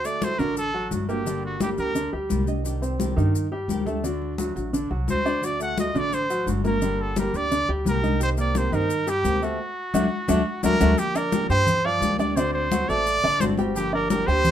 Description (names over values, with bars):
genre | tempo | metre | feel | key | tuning
latin, Cuban son and guajira | 173 BPM | 4/4 | straight | G minor from 11.0 s | A4 = 436 Hz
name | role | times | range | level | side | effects
clear trumpet | melody | 0.0-2.1, 5.1-14.5 s | F#4 to F#5 | -25 LUFS | right 2 dB | none
nylon-string guitar | accompaniment | 0.0-14.5 s | C3 to G4 | -30 LUFS | left 2 dB | none
clear grand piano | arpeggios | 0.0-14.5 s | D3 to D6 | -28 LUFS | right 1 dB | none
upright bass | bass | 0.0-14.5 s | G1 to G2 | -28 LUFS | equal | none
congas | percussion | 0.0-14.5 s | none | -28 LUFS | left 4 dB | none
maracas | percussion | 0.0-14.5 s | none | -38 LUFS | left 4 dB | none
room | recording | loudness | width
moderate studio reverb, RT60 0.6 s | minimal, uncompressed stereo recording | -21 LUFS | side -10 dB against mid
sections
0.0-11.0 A section; 11.0-14.5 B section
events
band accent 9.6-11.0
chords
0.0 D; 1.3 Gm; 2.7 Cmadd9; 4.0 D; 6.8 Gm; 8.2 Cm7; 9.6 D; 11.0 Gm7; 12.4 D7; 13.7 Gm7